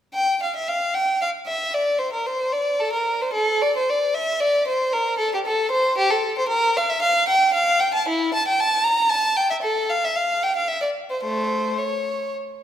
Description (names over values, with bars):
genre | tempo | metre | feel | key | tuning
classical, baroque-style suite movement for unaccompanied violin | 114 BPM | 3/4 | rubato | unclear | A4 = 436 Hz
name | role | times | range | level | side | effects
rich violin | solo | 0.1-12.3 s | A3 to Bb5 | -19 LUFS | equal | none
room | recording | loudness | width
moderate concert hall reverb, RT60 2.2 s | minimal, uncompressed stereo recording | -19 LUFS | side -10 dB against mid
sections
0.1-12.6 A section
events
none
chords
none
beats
| 0.14 0.68 1.21 | 1.74 2.27 2.80 | 3.35 3.89 4.41 | 4.93 5.45 5.97 | 6.49 7.01 7.53 | 8.07 8.60 9.12 | 9.64 10.17 10.69 | 11.24 11.79